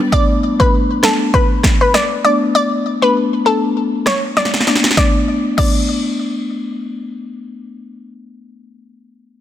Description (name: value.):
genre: dancehall.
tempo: 99 BPM.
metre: 4/4.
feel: swing 56% on 16ths.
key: B minor.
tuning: A4 = 439 Hz.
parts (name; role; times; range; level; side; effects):
marimba with medium mallets; accompaniment; 0.0-8.9 s; G3 to D4; -19 LUFS; left 2 dB; none.
analog pluck; melody; 0.1-6.8 s; A4 to D5; -17 LUFS; left 1 dB; chorus, ping-pong delay.
deep house drum kit; drums; 0.1-5.8 s; crash cymbal, kick drum, rim click, snare drum; -15 LUFS; equal; none.
room: light reverb, digital ambience.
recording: dense, heavily limited modern master.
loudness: -12 LUFS.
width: side -11 dB against mid.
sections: 0.1-5.0 A section; 5.0-7.4 B section.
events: drum fill 4.4-5.0.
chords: 0.1 Bm7.